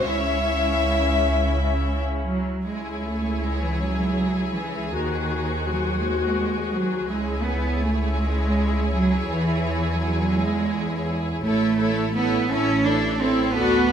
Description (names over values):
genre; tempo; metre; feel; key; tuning
classical, slow romantic movement for string orchestra; 44-58 BPM (dotted quarters); 6/8; rubato; C# minor; A4 = 441 Hz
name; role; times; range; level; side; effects
rich chamber violin section; melody; 0.0-13.9 s; B#4 to D5; -36 LUFS; equal; none
rich chamber violin section; second line; 0.0-13.9 s; G#4 to E5; -29 LUFS; left 2 dB; none
rich chamber viola section; accompaniment; 0.0-13.9 s; C#4 to F#4; -28 LUFS; left 2 dB; none
rich chamber cello section; bass; 0.0-13.9 s; C#3 to D4; -25 LUFS; right 3 dB; none
rich chamber double bass section; bass; 0.0-13.9 s; A1 to E2; -26 LUFS; right 1 dB; none
room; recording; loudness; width
wet stone room reverb, RT60 1.1 s; minimal, uncompressed stereo recording; -21 LUFS; side -8 dB against mid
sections
0.0-2.6 A section; 2.6-13.9 A section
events
none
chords
0.0 C#m; 4.9 G#7/D#; 7.1 C#m; 9.3 C#m/E; 11.4 A